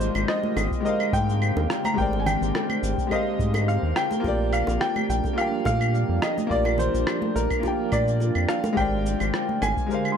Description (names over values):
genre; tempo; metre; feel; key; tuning
sunset chillout; 106 BPM; 4/4; swing 53% on 16ths; unclear; A4 = 438 Hz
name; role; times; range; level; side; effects
clear baby grand piano; melody; 0.0-10.2 s; Bb4 to C6; -28 LUFS; equal; digital delay
clear concert grand piano; accompaniment; 0.0-10.2 s; Ab3 to G5; -28 LUFS; moving between left 4 dB and right 4 dB; auto-pan, tape echo
shimmering ambient pad; sustained chords; 0.0-10.2 s; D3 to Bb4; -30 LUFS; equal; chorus, built-in reverb
round analog bass; bass; 0.0-9.7 s; Ab1 to Bb2; -25 LUFS; equal; none
electronic cabasa, claves and rim click; drums; 0.0-10.2 s; none; -30 LUFS; left 1 dB; none
bongos and congas; percussion; 0.1-9.7 s; none; -33 LUFS; right 1 dB; none
electronic kick drum; drums; 0.7-9.9 s; none; -31 LUFS; equal; none
room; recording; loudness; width
light reverb; none; -21 LUFS; side -7 dB against mid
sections
0.0-10.2 A section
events
none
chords
0.0 Abmaj9#11; 4.2 Bb6; 8.8 Abmaj9#11